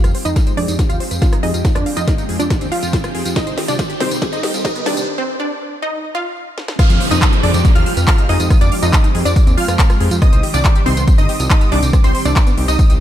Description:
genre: uplifting trance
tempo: 140 BPM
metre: 4/4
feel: straight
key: unclear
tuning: A4 = 440 Hz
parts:
  - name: wide unison pluck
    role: melody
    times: 0.0-13.0 s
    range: C4 to F5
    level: -22 LUFS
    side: equal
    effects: sidechain pumping, ping-pong delay
  - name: analog string pad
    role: sustained chords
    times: 0.0-12.9 s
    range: Eb3 to G4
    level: -25 LUFS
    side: equal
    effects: ensemble chorus, sidechain pumping
  - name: tight sequenced synth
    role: arpeggios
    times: 0.0-12.9 s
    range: F3 to F5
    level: -28 LUFS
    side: equal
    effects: chorus, sidechain pumping, ping-pong delay
  - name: fat analog bass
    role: bass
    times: 0.0-13.0 s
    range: G1 to F2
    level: -19 LUFS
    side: equal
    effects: sidechain pumping
  - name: techno drum kit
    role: drums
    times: 0.0-13.0 s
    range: crash cymbal, handclaps, hi-hat, rim click, snare drum, tambourine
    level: -23 LUFS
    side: equal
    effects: none
  - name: riser and downlifter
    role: sound effects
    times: 2.0-10.2 s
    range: none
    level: -26 LUFS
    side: right 1 dB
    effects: none
  - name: electronic kick drum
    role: drums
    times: 0.4-12.9 s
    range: none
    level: -13 LUFS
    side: equal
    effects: none
  - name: supersaw stab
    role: second line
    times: 6.8-13.0 s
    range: C6 to F6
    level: -25 LUFS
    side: right 1 dB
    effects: sidechain pumping
room: digital ambience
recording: high-pass filter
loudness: -13 LUFS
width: side -12 dB against mid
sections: 0.0-6.8 A section; 6.8-13.0 B section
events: build-up 0.0-6.8; drum fill 0.0-5.1, 6.6; filter sweep 0.0-6.8; riser 2.0-5.1; break 5.1-6.8; drop 6.8-13.0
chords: 0.0 Fmadd9; 3.4 Cm; 6.8 Fmadd9; 10.2 Cm

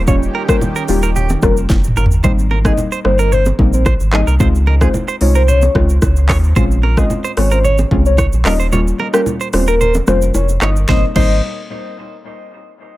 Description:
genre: afrobeats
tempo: 111 BPM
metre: 4/4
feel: straight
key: Ab major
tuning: A4 = 439 Hz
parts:
  - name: lush unison pad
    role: sustained chords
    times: 0.0-2.2 s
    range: Eb3 to G4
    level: -26 LUFS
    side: right 2 dB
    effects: chorus, sidechain pumping
  - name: warm sub bass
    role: bass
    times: 0.0-11.4 s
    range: Eb1 to Eb2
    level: -14 LUFS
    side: equal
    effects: none
  - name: soft octave-layered synth lead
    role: melody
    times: 0.1-11.4 s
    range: G4 to Eb5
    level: -20 LUFS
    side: left 2 dB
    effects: chorus, phaser, dub echo
  - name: soft round pluck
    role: accompaniment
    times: 0.1-11.4 s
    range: G3 to F4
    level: -21 LUFS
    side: left 2 dB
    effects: chorus, dub echo
  - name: direct-recorded clean electric guitar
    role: riff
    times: 0.1-11.4 s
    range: G4 to Db5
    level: -24 LUFS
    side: right 6 dB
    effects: dub echo
  - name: afro-pop drum kit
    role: drums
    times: 0.1-11.3 s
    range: crash cymbal, handclaps, hi-hat, kick drum, rim click, shaker, snare drum, toms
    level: -17 LUFS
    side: equal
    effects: none
  - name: congas and bongos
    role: percussion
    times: 0.1-11.4 s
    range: none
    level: -24 LUFS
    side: right 1 dB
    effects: dub echo
room: little or no reverb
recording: echo-heavy mix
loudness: -11 LUFS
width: side -16 dB against mid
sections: 0.0-2.2 A section; 2.2-10.9 B section; 10.9-13.0 C section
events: drum fill 1.7-2.2; kick muted 8.7-10.9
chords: 0.0 Eb7; 2.2 Abmaj7; 4.4 Dbmaj7; 6.6 Bbm7; 8.5 Eb7; 10.9 Abmaj7

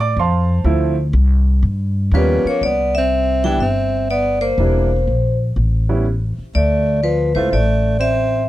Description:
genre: jazz, small-group swing and bop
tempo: 122 BPM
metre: 4/4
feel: swing 66% on 8ths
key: C major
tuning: A4 = 440 Hz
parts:
  - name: warm grand piano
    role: accompaniment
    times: 0.0-7.5 s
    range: E3 to D6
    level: -21 LUFS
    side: right 4 dB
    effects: none
  - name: upright bass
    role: bass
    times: 0.0-8.5 s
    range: E1 to A2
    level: -17 LUFS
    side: equal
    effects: none
  - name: vibraphone with medium hard mallets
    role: melody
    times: 2.1-8.5 s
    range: B4 to G5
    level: -18 LUFS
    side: left 2 dB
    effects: none
  - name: warm tenor saxophone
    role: second line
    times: 2.2-8.5 s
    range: F3 to E4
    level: -22 LUFS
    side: right 5 dB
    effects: none
room: little or no reverb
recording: dry, close 1970s-style studio recording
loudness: -14 LUFS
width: side -15 dB against mid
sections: 0.0-2.6 A section; 2.6-8.5 B section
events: none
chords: 0.0 F; 0.7 Dm9; 1.6 G7alt; 2.6 Cmaj7; 4.6 Em7b5; 5.6 A7; 6.6 D7(no3)

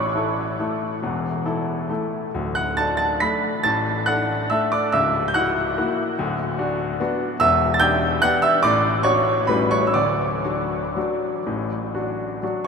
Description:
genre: classical, piano waltz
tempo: 115-153 BPM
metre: 3/4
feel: rubato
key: D major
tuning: A4 = 439 Hz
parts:
  - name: clear grand piano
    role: solo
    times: 0.0-12.7 s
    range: C#1 to B6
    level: -19 LUFS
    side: equal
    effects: none
room: wet huge ambient reverb, RT60 7.4 s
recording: in a vast, echoing space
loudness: -19 LUFS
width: side -5 dB against mid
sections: 0.0-12.7 A section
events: none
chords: 0.0 A; 2.3 D; 4.9 F#7/C#; 6.2 Bm/D; 7.4 Em7; 8.6 D/A; 9.5 A13; 9.9 D

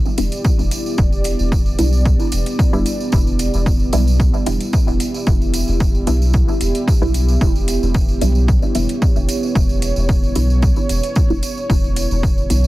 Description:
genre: dub techno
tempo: 112 BPM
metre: 4/4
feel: straight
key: unclear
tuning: A4 = 445 Hz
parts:
  - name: dark analog pad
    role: sustained chords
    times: 0.0-12.7 s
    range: B3 to D5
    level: -23 LUFS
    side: right 1 dB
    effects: chorus, sidechain pumping
  - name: tambourine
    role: percussion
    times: 0.1-12.7 s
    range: none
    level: -30 LUFS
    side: right 3 dB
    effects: none
  - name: filtered dub chord stab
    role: stabs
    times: 0.2-12.7 s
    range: G3 to E4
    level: -25 LUFS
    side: equal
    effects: phaser, sidechain pumping, dub echo
  - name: soft dub sub bass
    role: bass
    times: 0.2-12.7 s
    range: E1 to B1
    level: -18 LUFS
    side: equal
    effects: sidechain pumping
  - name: electronic hi-hat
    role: drums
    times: 0.2-12.6 s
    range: none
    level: -30 LUFS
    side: left 1 dB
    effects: overdrive
  - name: electronic kick drum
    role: drums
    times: 0.4-12.3 s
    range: none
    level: -16 LUFS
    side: equal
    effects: none
room: little or no reverb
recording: dense, heavily limited modern master, vinyl crackle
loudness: -14 LUFS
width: side -17 dB against mid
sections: 0.0-12.7 A section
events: filter sweep on synth stab 0.0-12.7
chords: 0.0 Em7

